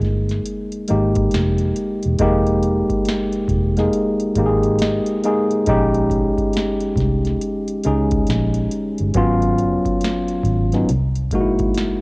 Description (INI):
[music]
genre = R&B, neo-soul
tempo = 69 BPM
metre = 4/4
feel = swing 63% on 16ths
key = F minor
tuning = A4 = 440 Hz
[part]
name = tine electric piano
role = accompaniment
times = 0.0-12.0 s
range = Gb3 to Eb5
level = -18 LUFS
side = equal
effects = none
[part]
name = vintage muted fingered electric bass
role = bass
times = 0.0-11.9 s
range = E1 to Db2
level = -20 LUFS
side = equal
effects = none
[part]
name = booming analog drum machine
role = drums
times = 0.0-12.0 s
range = hi-hat, kick drum, snare drum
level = -25 LUFS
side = equal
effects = cassette tape
[sound]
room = moderate spring reverb, RT60 2.2 s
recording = home recording on cassette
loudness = -16 LUFS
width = side -27 dB against mid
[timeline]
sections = 0.0-12.0 A section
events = tine electric piano fill 4.4-5.7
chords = 0.0 Fm11; 5.7 Bbm11; 9.1 Abm7; 10.9 C7alt